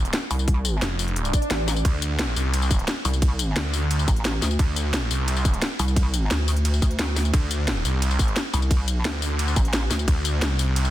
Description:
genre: dark technical drum and bass.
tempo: 175 BPM.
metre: 4/4.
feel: straight.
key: D minor.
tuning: A4 = 441 Hz.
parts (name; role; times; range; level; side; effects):
snarling distorted saw bass; bass; 0.0-10.9 s; F1 to D2; -23 LUFS; equal; distortion, tube saturation.
drum and bass drum kit; drums; 0.1-10.9 s; hi-hat, ride cymbal, snare drum, tambourine; -27 LUFS; left 1 dB; none.
pulsing pluck wobble bass; bass; 0.3-10.1 s; A1 to D2; -23 LUFS; equal; chorus.
electronic kick drum; drums; 0.5-10.1 s; none; -21 LUFS; equal; none.
swell; sound effects; 1.2-1.8 s; none; -30 LUFS; right 1 dB; none.
room: digital ambience.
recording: dense, heavily limited modern master.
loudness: -20 LUFS.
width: side -14 dB against mid.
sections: 0.0-10.9 A section.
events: swell 1.2-1.8.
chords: none.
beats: 0.14 | 0.48 0.82 1.16 1.51 | 1.85 2.19 2.54 2.88 | 3.22 3.56 3.91 4.25 | 4.59 4.93 5.28 5.62 | 5.96 6.31 6.65 6.99 | 7.33 7.68 8.02 8.36 | 8.71 9.05 9.39 9.73 | 10.08 10.42 10.76.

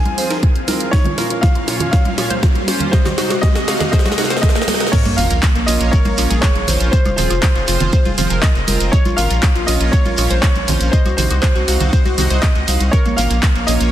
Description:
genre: progressive house.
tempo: 120 BPM.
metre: 4/4.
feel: straight.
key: Bb minor.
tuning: A4 = 441 Hz.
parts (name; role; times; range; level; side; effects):
clear baby grand piano; melody; 0.0-13.7 s; C5 to Ab5; -24 LUFS; equal; sidechain pumping, low-pass filter, dub echo.
supersaw pad; sustained chords; 0.0-13.9 s; Bb2 to Gb5; -28 LUFS; right 1 dB; vintage 12-bit sampler grit, sidechain pumping.
analog pluck; arpeggios; 0.0-13.9 s; Bb3 to Eb5; -25 LUFS; left 1 dB; chorus, sidechain pumping, ping-pong delay.
riser and sub drop; sound effects; 0.2-6.9 s; none; -25 LUFS; right 1 dB; none.
house drum kit; drums; 0.1-13.9 s; crash cymbal, handclaps, hi-hat, snare drum; -22 LUFS; equal; overdrive.
congas and woodblock; percussion; 0.1-13.2 s; none; -25 LUFS; right 2 dB; sidechain pumping on perc.
chorused polysynth; stabs; 0.2-13.9 s; Bb2 to F5; -24 LUFS; right 2 dB; sidechain pumping, ping-pong delay.
electronic kick drum; drums; 0.4-13.5 s; none; -14 LUFS; equal; none.
soft synth bell; second line; 4.9-13.8 s; C5 to F5; -31 LUFS; equal; none.
shekere; percussion; 4.9-13.9 s; none; -29 LUFS; right 1 dB; none.
round analog bass; bass; 5.1-13.9 s; Eb1 to Db2; -18 LUFS; equal; sidechain pumping.
room: light reverb.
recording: dense, heavily limited modern master.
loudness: -13 LUFS.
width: side -12 dB against mid.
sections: 0.0-4.9 A section; 4.9-13.9 B section.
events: build-up 0.0-4.9; drum fill 0.0-4.9; filter sweep on analog polysynth 0.0-4.9; riser 0.2-4.9; drop 4.9-13.9; impact 4.9-6.9.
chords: 0.0 Fm; 0.9 Bbm; 2.9 Cdim; 4.9 Bbm; 6.9 Fm; 8.9 Bbm; 10.9 Cdim; 12.9 Bbm.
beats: 0.43 | 0.93 1.43 1.93 2.43 | 2.93 3.43 3.93 4.43 | 4.93 5.43 5.93 6.43 | 6.93 7.43 7.93 8.43 | 8.93 9.43 9.93 10.43 | 10.93 11.43 11.93 12.43 | 12.93 13.43.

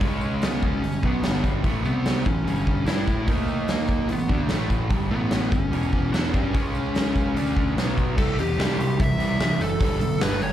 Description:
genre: classic rock.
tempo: 147 BPM.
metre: 4/4.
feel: straight.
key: unclear.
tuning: A4 = 440 Hz.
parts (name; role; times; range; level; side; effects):
fuzz lead guitar; melody; 0.0-10.5 s; G#3 to E5; -28 LUFS; equal; distortion.
overdriven electric guitar; riff; 0.0-10.5 s; E2 to A4; -30 LUFS; right 9 dB; slapback echo.
sludgy distorted guitar; riff; 0.0-10.5 s; E2 to A4; -30 LUFS; left 9 dB; overdrive, slapback echo.
growling picked electric bass; bass; 0.0-10.5 s; E1 to A2; -28 LUFS; equal; overdrive.
huge arena drum kit; drums; 0.0-10.5 s; crash cymbal, hi-hat, kick drum, snare drum; -25 LUFS; equal; none.
tambourine; percussion; 0.0-8.1 s; none; -51 LUFS; right 1 dB; none.
room: studio reverb.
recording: live gig heard through the venue's PA, club reverb.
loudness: -21 LUFS.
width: side -11 dB against mid.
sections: 0.0-8.2 A section; 8.2-10.5 B section.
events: none.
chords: 0.0 C#5; 0.8 G5; 1.6 A5; 1.9 C5; 2.3 A; 2.5 G5; 2.9 A5; 3.3 D#5; 4.1 A5; 4.9 G5; 5.1 A5; 5.5 G5; 5.7 E5; 6.1 G5; 6.5 C#5; 7.4 D5; 7.8 B5; 8.2 C; 9.8 Gadd9.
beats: | 0.01 0.42 0.83 1.24 | 1.65 2.06 2.47 2.87 | 3.28 3.69 4.10 4.51 | 4.92 5.32 5.73 6.14 | 6.55 6.96 7.36 7.77 | 8.18 8.59 8.99 9.40 | 9.80 10.21.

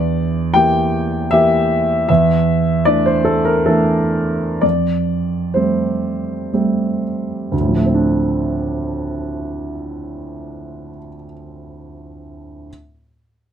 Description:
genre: neoclassical minimalist piano.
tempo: 60-78 BPM.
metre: 3/4.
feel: rubato.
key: D minor.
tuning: A4 = 440 Hz.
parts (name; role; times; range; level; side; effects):
clear baby grand piano; solo; 0.0-12.7 s; D2 to G5; -16 LUFS; right 1 dB; none.
room: light reverb.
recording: close, detailed microphones.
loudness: -15 LUFS.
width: side -9 dB against mid.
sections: 0.0-7.5 A section; 7.5-10.4 B section.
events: slowing down 0.9-7.5.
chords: 0.0 Em7b5; 2.1 Asus4/E; 4.6 Fadd9; 7.5 Dm7.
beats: 0.53 1.31 | 2.09 2.87 3.69 | 4.63 5.57 6.54 | 7.52 8.49 9.46.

